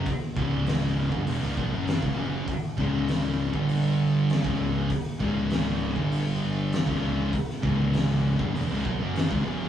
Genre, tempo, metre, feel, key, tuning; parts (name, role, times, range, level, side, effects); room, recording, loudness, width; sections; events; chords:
stoner and doom metal; 99 BPM; 4/4; straight; A4 = 439 Hz
thick fuzz guitar; riff; 0.0-9.7 s; C#2 to G3; -29 LUFS; left 3 dB; distortion
thick fuzz guitar; riff; 0.0-9.7 s; C#2 to G3; -28 LUFS; right 3 dB; distortion
fuzz fingered electric bass; bass; 0.0-9.7 s; C#1 to B1; -33 LUFS; equal; overdrive
oversized low-tuned drum kit; drums; 0.1-9.4 s; hi-hat, kick drum, snare drum; -30 LUFS; equal
light reverb; rough rehearsal-room recording; -24 LUFS; side -10 dB against mid
0.0-9.7 A section
0.0 C#5; 3.5 G5; 4.4 C#5; 6.0 G5; 6.9 C#m